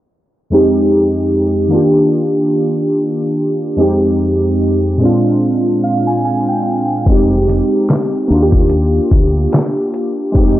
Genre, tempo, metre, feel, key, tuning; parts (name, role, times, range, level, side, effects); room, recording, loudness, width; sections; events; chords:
lo-fi hip hop; 73 BPM; 4/4; swing 56% on 16ths; A4 = 440 Hz
warbly lo-fi synth keys; accompaniment; 0.5-10.6 s; F2 to Ab5; -12 LUFS; equal; chorus, cassette tape, low-pass filter
deep dub fingered electric bass; bass; 7.1-10.6 s; F1 to Eb2; -16 LUFS; left 1 dB; tube saturation
trip hop sampler-style drum kit; drums; 7.1-10.6 s; handclaps, hi-hat, kick drum, snare drum; -13 LUFS; left 1 dB
light reverb; dry, gritty hardware recording, low-pass filter; -11 LUFS; side -14 dB against mid
0.5-10.6 A section
filter sweep 0.5-10.6; synth keys fill 5.4-7.1
0.5 Fm9; 1.7 Ebmaj7; 3.8 Fm9; 5.0 Bb7; 7.1 Fm9; 8.3 Ebmaj7